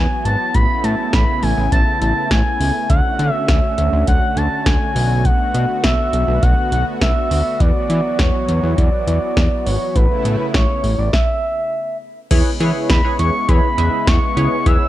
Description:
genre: synth-pop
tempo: 102 BPM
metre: 4/4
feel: straight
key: E mixolydian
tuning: A4 = 440 Hz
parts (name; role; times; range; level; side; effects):
- expressive synth lead; melody; 0.0-14.9 s; B4 to E6; -20 LUFS; equal; chorus
- lush unison pad; sustained chords; 0.0-14.9 s; C#3 to F#4; -24 LUFS; right 1 dB; chorus
- fat analog bass; bass; 0.0-14.8 s; G#1 to E3; -18 LUFS; equal; none
- electro analog drum machine; drums; 0.3-14.8 s; crash cymbal, hi-hat, kick drum, snare drum; -17 LUFS; equal; none
- funky polysynth comp; accompaniment; 12.3-14.9 s; E4 to E5; -22 LUFS; left 1 dB; chorus
room: little or no reverb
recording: dark, warm production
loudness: -14 LUFS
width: side -14 dB against mid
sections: 0.0-12.3 A section; 12.3-14.9 B section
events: stop 11.1-12.3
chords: 0.0 Esus2; 0.5 Aadd9; 2.9 Dmaj7; 5.0 Bm7; 7.6 Esus2; 10.0 Aadd9; 12.3 E6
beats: | 0.54 1.13 1.72 2.31 | 2.90 3.48 4.07 4.66 | 5.25 5.84 6.43 7.01 | 7.60 8.19 8.78 9.37 | 9.96 10.54 11.13 11.72 | 12.31 12.90 13.48 14.07 | 14.66

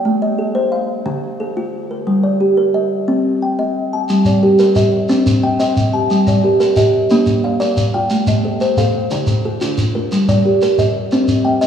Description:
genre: southern african traditional, mbira-style interlocking cycle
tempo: 119 BPM (dotted quarters)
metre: 12/8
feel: straight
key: G equiheptatonic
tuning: A4 = 437 Hz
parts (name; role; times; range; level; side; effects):
- kalimba; arpeggios; 0.0-11.7 s; D3 to A5-29c; -14 LUFS; equal; none
- shekere; percussion; 4.1-11.7 s; none; -19 LUFS; equal; none
- buzzing marimba with medium mallets; arpeggios; 4.3-11.7 s; D3 to E5-43c; -21 LUFS; right 4 dB; none
room: wet lush hall reverb, RT60 2.5 s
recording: rough home demo mix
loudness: -13 LUFS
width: side -8 dB against mid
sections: 0.0-11.7 A section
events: none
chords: 0.1 Am; 1.1 Dm; 2.1 Gm; 3.1 C; 4.1 Gm; 5.1 C; 6.1 Gm; 7.1 Bb; 8.1 Am; 9.1 Dm; 10.1 Gm; 11.1 C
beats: | 0.05 0.56 1.06 1.57 | 2.07 2.58 3.08 3.58 | 4.09 4.59 5.09 5.60 | 6.10 6.60 7.10 7.61 | 8.11 8.61 9.11 9.61 | 10.11 10.62 11.12 11.62

